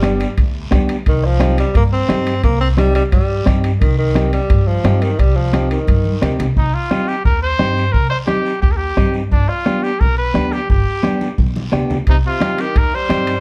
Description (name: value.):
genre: latin, cumbia.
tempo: 174 BPM.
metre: 4/4.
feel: straight.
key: C harmonic minor.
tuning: A4 = 439 Hz.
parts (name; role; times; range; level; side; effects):
clear tenor saxophone; second line; 0.0-6.4, 12.1-13.4 s; C3 to C4; -23 LUFS; equal; none.
clean electric guitar; accompaniment; 0.0-13.3 s; B3 to G4; -22 LUFS; equal; none.
upright bass; bass; 0.0-13.4 s; G1 to G2; -21 LUFS; equal; none.
bombo; percussion; 0.0-13.3 s; none; -19 LUFS; equal; none.
congas; percussion; 0.0-13.3 s; none; -27 LUFS; equal; none.
guiro; percussion; 0.0-13.4 s; none; -38 LUFS; equal; none.
timbales; percussion; 0.0-6.6, 12.1-13.4 s; none; -35 LUFS; equal; none.
clear trumpet; melody; 6.6-13.4 s; D4 to C5; -22 LUFS; equal; none.
room: light reverb.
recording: dark, warm production.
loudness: -16 LUFS.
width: mono.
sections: 0.0-6.6 A section; 6.6-13.4 B section.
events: tenor saxophone solo 0.0-6.6; drum fill 5.9-6.6, 11.2-12.1.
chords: 0.0 G; 1.1 Cm; 9.3 G; 12.1 Cm.